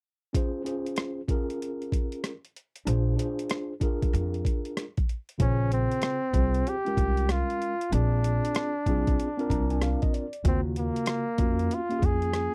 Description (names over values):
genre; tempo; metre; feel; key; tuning
hip hop, jazz-hop; 95 BPM; 4/4; swing 63% on 16ths; unclear; A4 = 438 Hz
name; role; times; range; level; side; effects
mellow tine electric piano; accompaniment; 0.3-12.5 s; Db3 to Bb5; -34 LUFS; equal; none
boom bap sampler-style drum kit; drums; 0.3-12.5 s; hi-hat, kick drum, rim click; -30 LUFS; equal; overdrive
upright bass; bass; 2.9-12.5 s; Bb1 to F2; -29 LUFS; equal; none
warm flugelhorn; melody; 5.4-12.5 s; Bb3 to Ab4; -32 LUFS; equal; none
room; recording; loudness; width
little or no reverb; dry, close 1970s-style studio recording; -28 LUFS; mono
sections
0.3-5.4 A section; 5.4-12.5 B section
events
tine electric piano fill 9.2-10.5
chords
0.3 Bbm9; 2.9 Bb7; 5.4 Bbm9; 7.9 Bb7; 10.5 Ebm9